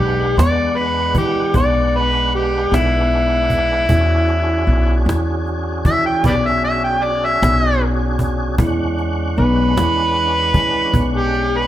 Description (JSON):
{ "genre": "slow blues", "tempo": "51 BPM (dotted quarters)", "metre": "12/8", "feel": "straight", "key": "E mixolydian", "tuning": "A4 = 440 Hz", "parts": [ { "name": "overdriven harmonica", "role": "melody", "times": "0.0-11.7 s", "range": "E4 to G5", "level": "-17 LUFS", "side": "equal", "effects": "none" }, { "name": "tonewheel organ", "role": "sustained chords", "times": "0.0-11.7 s", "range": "G#3 to F#5", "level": "-24 LUFS", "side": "equal", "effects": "slow rotary speaker, overdrive, chorus vibrato" }, { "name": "upright bass", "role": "bass", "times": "0.0-11.7 s", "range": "B1 to E3", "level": "-18 LUFS", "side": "equal", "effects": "none" }, { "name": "cajon", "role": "drums", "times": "0.4-11.4 s", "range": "none", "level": "-22 LUFS", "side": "equal", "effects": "none" } ], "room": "light reverb", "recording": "none", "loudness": "-14 LUFS", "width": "side -12 dB against mid", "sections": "0.0-11.7 A section", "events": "harmonica solo 0.0-11.7", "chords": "0.0 E13" }